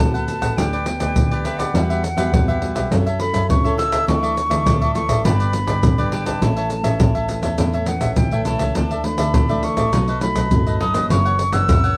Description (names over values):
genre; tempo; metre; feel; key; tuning
samba and choro; 103 BPM; 4/4; straight; D major; A4 = 445 Hz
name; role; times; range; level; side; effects
silver concert flute; melody; 0.0-12.0 s; E5 to E6; -26 LUFS; equal; plate reverb
cavaquinho; accompaniment; 0.0-12.0 s; D4 to F#5; -28 LUFS; equal; none
nylon-string guitar; accompaniment; 0.0-12.0 s; F#2 to A4; -28 LUFS; equal; none
rich double bass; bass; 0.0-12.0 s; F#1 to F#2; -24 LUFS; equal; none
maracas, surdo and pandeiro; percussion; 0.0-12.0 s; none; -23 LUFS; equal; none
room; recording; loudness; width
moderate studio reverb, RT60 0.7 s; none; -19 LUFS; mono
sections
0.0-12.0 A section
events
none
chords
0.0 D6; 0.6 G/D; 1.7 Emadd9; 2.9 F#m7; 4.1 Dsus2; 5.3 G; 6.4 A; 8.8 Dsus2; 9.9 B7; 11.1 F#7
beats
0.00 0.58 1.17 | 1.75 2.33 2.92 3.50 | 4.08 4.67 5.25 5.83 | 6.42 7.00 7.59 8.17 | 8.76 9.34 9.93 10.51 | 11.10 11.69